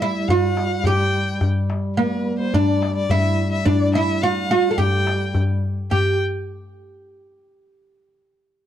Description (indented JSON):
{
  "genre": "Arabic maqam ensemble",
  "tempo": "107 BPM",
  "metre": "4/4",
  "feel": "straight",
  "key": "G maqam rast",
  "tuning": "A4 = 440 Hz",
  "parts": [
    { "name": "oud", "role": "melody", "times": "0.0-6.2 s", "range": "Bb3+50c to A4", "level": "-21 LUFS", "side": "right 2 dB", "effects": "none" },
    { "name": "rich violin", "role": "second line", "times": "0.0-6.2 s", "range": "B4-50c to G5", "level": "-26 LUFS", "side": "left 4 dB", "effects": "none" },
    { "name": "mellow duduk", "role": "drone", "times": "0.0-6.0 s", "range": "G3", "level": "-27 LUFS", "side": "equal", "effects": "none" },
    { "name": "darbuka", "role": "percussion", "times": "0.0-6.2 s", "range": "none", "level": "-22 LUFS", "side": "left 2 dB", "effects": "none" }
  ],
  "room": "small room ambience",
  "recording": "dry, close 1970s-style studio recording",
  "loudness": "-18 LUFS",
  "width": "side -10 dB against mid",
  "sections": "0.0-5.9 A section; 5.9-8.2 B section",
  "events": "none",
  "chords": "none",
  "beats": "0.28 0.85 | 1.41 1.97 2.53 3.09 | 3.66 4.22 4.78 5.34 | 5.91"
}